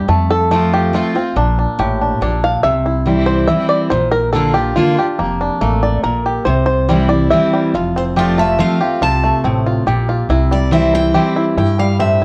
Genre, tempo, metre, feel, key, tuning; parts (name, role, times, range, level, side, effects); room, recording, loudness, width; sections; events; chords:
bluegrass; 141 BPM; 3/4; straight; A4 = 440 Hz
bluegrass banjo; melody; 0.0-12.2 s; G3 to F5; -19 LUFS; equal; plate reverb
picked steel-string acoustic guitar; accompaniment; 0.0-12.2 s; F2 to F4; -19 LUFS; equal
upright bass; bass; 0.0-12.2 s; F1 to G2; -22 LUFS; equal
picked steel-string acoustic guitar; melody; 8.0-12.2 s; C5 to A5; -21 LUFS; equal; plate reverb
moderate studio reverb, RT60 0.8 s; worn, warbling old tape, cassette tape, warbly pitch drift; -15 LUFS; mono
0.0-7.7 A section; 7.7-12.2 B section
five-string banjo solo 0.0-7.7
0.1 F; 1.4 Bb; 2.6 C; 3.9 Bb; 6.5 C; 7.7 F; 10.3 C